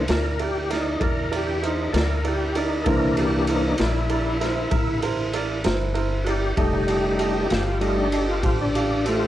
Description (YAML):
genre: slow blues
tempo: 65 BPM (dotted quarters)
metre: 12/8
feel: straight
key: C mixolydian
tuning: A4 = 437 Hz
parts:
  - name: overdriven tonewheel organ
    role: sustained chords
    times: 0.0-9.3 s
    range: E3 to Bb4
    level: -24 LUFS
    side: left 1 dB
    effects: slow rotary speaker, chorus vibrato, cassette tape, plate reverb
  - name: warm saxophone section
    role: sustained chords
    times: 0.0-9.3 s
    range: A3 to G4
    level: -34 LUFS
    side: left 2 dB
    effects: none
  - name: upright bass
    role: bass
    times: 0.0-9.3 s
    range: F1 to E2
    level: -27 LUFS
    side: left 1 dB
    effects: none
  - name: bright upright piano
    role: accompaniment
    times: 0.1-9.3 s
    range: E4 to F5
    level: -27 LUFS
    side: right 7 dB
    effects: cassette tape, plate reverb
  - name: raw garage drum kit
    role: drums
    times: 0.1-9.2 s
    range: kick drum, ride cymbal, snare drum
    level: -27 LUFS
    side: left 1 dB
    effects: cassette tape
room: moderate studio reverb, RT60 0.6 s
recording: home recording on cassette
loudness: -20 LUFS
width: side -13 dB against mid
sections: 0.0-9.3 A section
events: tonewheel organ solo 0.0-9.3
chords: 0.0 C9; 6.6 F9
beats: 0.08 1.01 1.94 | 2.87 3.79 4.72 5.65 | 6.58 7.51 8.44